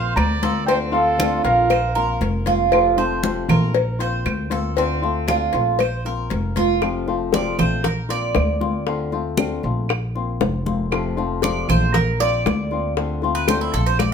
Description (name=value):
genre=latin, Cuban son and guajira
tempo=117 BPM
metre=4/4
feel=straight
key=unclear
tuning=A4 = 440 Hz
part: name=felt-muted upright piano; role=melody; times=0.0-2.2 s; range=F5 to C6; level=-21 LUFS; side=right 2 dB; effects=none
part: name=bright trumpet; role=second line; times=0.0-2.2 s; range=A4 to F5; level=-27 LUFS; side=right 5 dB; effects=none
part: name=flamenco guitar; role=accompaniment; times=0.0-14.0 s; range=C3 to F4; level=-25 LUFS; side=left 6 dB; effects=none
part: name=Cuban tres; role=arpeggios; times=0.0-14.1 s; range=C4 to D5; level=-23 LUFS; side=right 6 dB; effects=none
part: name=upright bass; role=bass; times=0.0-14.1 s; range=F1 to D2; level=-24 LUFS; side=equal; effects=none
part: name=claves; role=percussion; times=0.2-14.1 s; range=none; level=-30 LUFS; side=right 8 dB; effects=none
part: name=congas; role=percussion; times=0.2-14.1 s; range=none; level=-24 LUFS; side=left 1 dB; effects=none
part: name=cowbell and bongos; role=percussion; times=0.2-14.1 s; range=none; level=-24 LUFS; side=left 6 dB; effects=none
room=moderate studio reverb, RT60 0.8 s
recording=minimal, uncompressed stereo recording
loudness=-18 LUFS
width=side -7 dB against mid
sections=0.0-6.8 A section; 6.8-14.1 B section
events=Cuban tres solo 6.8-14.1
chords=0.0 Bbadd9; 1.7 Bbsus2; 2.7 F; 3.7 Bbadd9; 5.8 Bbsus2; 6.8 F; 7.8 Bbadd9; 8.9 Dm7; 9.9 Bbsus2; 10.9 F; 11.9 Bbadd9; 13.0 Dm7